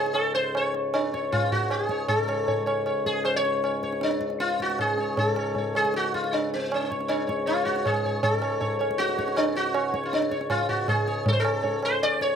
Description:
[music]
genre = indian classical, Hindustani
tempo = 157 BPM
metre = 4/4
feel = straight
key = C# raga bhairav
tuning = A4 = 440 Hz
[part]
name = sitar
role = melody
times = 0.0-12.4 s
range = B#3 to D5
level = -24 LUFS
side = left 1 dB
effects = slapback echo
[part]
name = pedal harmonium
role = drone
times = 0.0-12.4 s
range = C#2 to G#2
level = -33 LUFS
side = left 2 dB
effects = none
[part]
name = tabla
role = percussion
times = 0.1-12.4 s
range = none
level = -29 LUFS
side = right 2 dB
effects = none
[sound]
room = light reverb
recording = recorded outdoors, with no room sound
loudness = -23 LUFS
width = side -7 dB against mid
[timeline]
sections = 0.0-8.2 A section; 8.2-12.4 B section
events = speeding up 0.0-12.4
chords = none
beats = 0.15 | 0.54 0.93 1.31 1.70 | 2.09 2.47 2.86 3.25 | 3.63 4.02 4.40 4.79 | 5.17 5.55 5.94 6.32 | 6.70 7.09 7.47 7.85 | 8.23 8.61 8.99 9.37 | 9.75 10.13 10.51 10.89 | 11.27 11.64 12.02

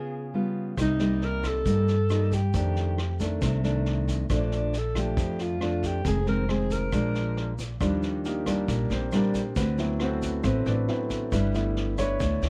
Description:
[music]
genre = bossa nova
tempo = 137 BPM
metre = 4/4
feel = straight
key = Bb major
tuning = A4 = 441 Hz
[part]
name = breathy alto saxophone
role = melody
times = 0.0-7.6 s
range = D4 to Bb4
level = -33 LUFS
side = equal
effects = none
[part]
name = nylon-string guitar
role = accompaniment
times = 0.0-12.5 s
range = F2 to B4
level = -31 LUFS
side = equal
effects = none
[part]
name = upright bass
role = bass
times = 0.8-12.5 s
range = F1 to G2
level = -30 LUFS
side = equal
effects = none
[part]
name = vintage brush drum kit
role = drums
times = 0.8-12.5 s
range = kick drum, rim click, snare drum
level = -36 LUFS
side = equal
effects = none
[part]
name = tube shaker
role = percussion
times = 0.8-12.5 s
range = none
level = -51 LUFS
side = equal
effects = none
[part]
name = warm concert grand piano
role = accompaniment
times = 7.8-12.5 s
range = F3 to E5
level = -33 LUFS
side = equal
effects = none
[sound]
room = little or no reverb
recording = dark, warm production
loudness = -27 LUFS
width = mono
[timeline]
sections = 0.0-7.8 A section; 7.8-12.5 B section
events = grand piano solo 7.8-12.5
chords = 0.0 Db7#11; 0.8 Cm7; 2.5 F13; 4.3 Bbmaj7; 6.1 Fm7; 6.9 Bb7; 7.8 Ebmaj7; 9.6 D13; 11.3 G6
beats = 0.34 | 0.78 1.22 1.66 2.10 | 2.54 2.98 3.42 3.86 | 4.30 4.74 5.18 5.62 | 6.06 6.50 6.93 7.37 | 7.81 8.25 8.69 9.13 | 9.57 10.01 10.45 10.89 | 11.33 11.77 12.21

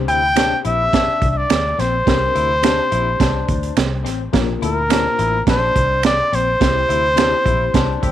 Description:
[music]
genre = uptempo 1960s-style soul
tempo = 106 BPM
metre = 4/4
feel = straight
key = C mixolydian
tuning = A4 = 440 Hz
[part]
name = reed electric piano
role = accompaniment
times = 0.0-8.0 s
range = Bb2 to C5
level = -25 LUFS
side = left 13 dB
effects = overdrive, fast tremolo
[part]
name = vintage muted fingered electric bass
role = bass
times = 0.0-8.1 s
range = A1 to D2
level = -22 LUFS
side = left 1 dB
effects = none
[part]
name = clear trumpet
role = melody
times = 0.1-8.1 s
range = Bb4 to G5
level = -17 LUFS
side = equal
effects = none
[part]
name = electric guitar through a small old amp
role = riff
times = 0.1-8.1 s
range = C4 to E4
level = -28 LUFS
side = left 14 dB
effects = none
[part]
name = crunchy breakbeat drum kit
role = drums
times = 0.1-8.1 s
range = hi-hat, kick drum, snare drum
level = -19 LUFS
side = right 4 dB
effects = none
[part]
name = finger snaps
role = percussion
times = 0.4-7.3 s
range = none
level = -25 LUFS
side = right 12 dB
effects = none
[part]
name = clear horn section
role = second line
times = 8.0-8.1 s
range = C4 to G4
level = -32 LUFS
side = equal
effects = none
[sound]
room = light reverb, small room ambience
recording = 1960s-style stereo with parts hard left and right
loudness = -14 LUFS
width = side -11 dB against mid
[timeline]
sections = 0.0-8.1 A section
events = band accent 6.6-8.1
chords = 0.0 Csus2; 4.3 Bb; 6.6 C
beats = 0.37 0.93 1.50 | 2.07 2.63 3.20 3.77 | 4.34 4.90 5.47 6.04 | 6.61 7.17 7.74

